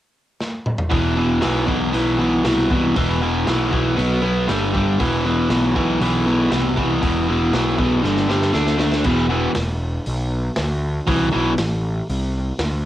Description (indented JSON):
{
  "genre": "garage rock duo or trio",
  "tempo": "118 BPM",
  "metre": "4/4",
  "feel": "straight",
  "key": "E minor",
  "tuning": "A4 = 440 Hz",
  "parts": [
    { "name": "crunchy breakbeat drum kit", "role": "drums", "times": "0.4-12.7 s", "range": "crash cymbal, hi-hat, kick drum, snare drum, toms", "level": "-25 LUFS", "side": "equal", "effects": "none" },
    { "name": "biting overdriven guitar", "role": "riff", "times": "0.9-11.5 s", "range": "E2 to D4", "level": "-18 LUFS", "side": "equal", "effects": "cassette tape" },
    { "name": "fuzz picked electric bass", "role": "bass", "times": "0.9-12.9 s", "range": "E1 to D2", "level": "-22 LUFS", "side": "equal", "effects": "overdrive" }
  ],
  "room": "light reverb",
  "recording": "home recording on cassette",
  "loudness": "-17 LUFS",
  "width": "side -13 dB against mid",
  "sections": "0.9-9.1 A section; 9.1-12.9 B section",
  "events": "drum fill 0.4-0.9, 8.0-9.1",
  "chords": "0.0 N.C.; 0.9 E5; 4.0 B5; 4.5 G5; 5.0 E5; 8.0 G5; 8.5 D5; 9.1 E5",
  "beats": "0.41 | 0.92 1.43 1.94 2.45 | 2.96 3.47 3.98 4.49 | 4.99 5.50 6.01 6.52 | 7.03 7.53 8.04 8.55 | 9.05 9.56 10.06 10.57 | 11.08 11.58 12.09 12.59"
}